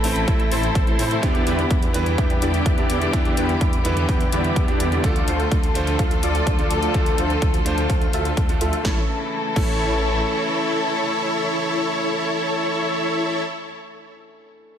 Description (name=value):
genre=EDM, festival progressive house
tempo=126 BPM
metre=4/4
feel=straight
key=unclear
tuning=A4 = 442 Hz
part: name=bright grand piano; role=accompaniment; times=0.0-14.8 s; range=A3 to C5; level=-28 LUFS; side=right 3 dB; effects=sidechain pumping, ping-pong delay
part: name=rich studio string section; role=sustained chords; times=0.0-12.9 s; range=C3 to A4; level=-27 LUFS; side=left 2 dB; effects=vintage 12-bit sampler grit, sidechain pumping
part: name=wide detuned saw bass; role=bass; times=0.0-10.2 s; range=A1 to A2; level=-25 LUFS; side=equal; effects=chorus, sidechain pumping
part: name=big-room dance drum kit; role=drums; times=0.0-9.7 s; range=crash cymbal, hi-hat, snare drum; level=-32 LUFS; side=left 3 dB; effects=studio reverb
part: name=dense compressed supersaw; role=riff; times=0.3-13.4 s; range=B3 to G5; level=-24 LUFS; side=equal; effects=sidechain pumping, low-pass filter, ping-pong delay
part: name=electronic kick drum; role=drums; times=0.3-9.7 s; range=none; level=-21 LUFS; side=equal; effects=overdrive, studio reverb
room=moderate lush hall reverb, RT60 2.1 s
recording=dreamy mix soaked in reverb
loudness=-18 LUFS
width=side -9 dB against mid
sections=0.0-8.8 A section; 8.8-12.7 B section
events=filter sweep on supersaw synth 0.0-8.8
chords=0.0 Am; 1.2 Em7; 5.0 Dm; 8.8 A